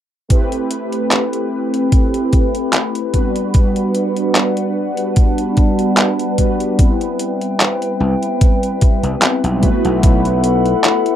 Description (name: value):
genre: vaporwave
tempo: 74 BPM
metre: 4/4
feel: swing 54% on 16ths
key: unclear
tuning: A4 = 443 Hz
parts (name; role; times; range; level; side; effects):
- mellow synth brass; accompaniment; 0.3-11.2 s; G3 to B4; -18 LUFS; equal; phaser, lush chorus, cassette tape, analog delay
- warbly tape-like pad; sustained chords; 0.8-11.2 s; G3 to B5; -21 LUFS; left 1 dB; chorus, built-in reverb
- detuned 8-bit digital drum machine; drums; 0.3-11.2 s; handclaps, hi-hat; -18 LUFS; equal; overdrive
- electronic kick drum; drums; 0.3-10.2 s; none; -13 LUFS; equal; none
- gritty slap bass; bass; 8.0-10.7 s; B1 to C2; -17 LUFS; equal; overdrive
room: light reverb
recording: rough home demo mix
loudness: -13 LUFS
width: side -10 dB against mid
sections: 0.3-11.2 A section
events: none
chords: 0.3 Am9; 3.1 Gmaj7; 6.8 Cmaj7; 9.6 B7sus4